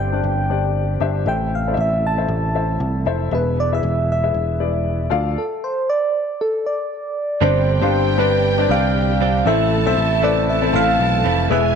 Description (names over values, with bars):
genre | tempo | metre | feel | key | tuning
pop | 117 BPM | 4/4 | swing 56% on 16ths | A minor | A4 = 440 Hz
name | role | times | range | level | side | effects
soft struck synth lead | melody | 0.0-11.8 s | A4 to A5 | -21 LUFS | right 1 dB | chorus
warm upright piano | accompaniment | 0.0-11.8 s | G2 to F5 | -22 LUFS | left 10 dB | none
tonewheel organ | sustained chords | 0.0-11.8 s | B2 to G4 | -32 LUFS | right 2 dB | none
picked electric bass | bass | 0.0-11.8 s | E1 to D2 | -21 LUFS | right 2 dB | none
dark symphonic violin section | second line | 7.4-11.8 s | G4 to A5 | -25 LUFS | equal | none
direct-recorded clean electric guitar | riff | 7.4-11.8 s | E2 to G4 | -23 LUFS | right 15 dB | none
room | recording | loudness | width
moderate spring reverb, RT60 1.8 s, small room ambience | 1960s-style stereo with parts hard left and right | -16 LUFS | side -6 dB against mid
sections
0.0-7.4 A section; 7.4-11.8 B section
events
stop 5.4-7.4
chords
0.0 Gsus4; 1.3 Am; 3.3 E; 5.1 Dm; 7.4 Gsus4; 9.5 Am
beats
0.24 0.76 | 1.27 1.78 2.30 2.81 | 3.32 3.83 4.35 4.86 | 5.37 5.88 6.39 6.91 | 7.42 7.93 8.44 8.95 | 9.46 9.97 10.48 10.99 | 11.51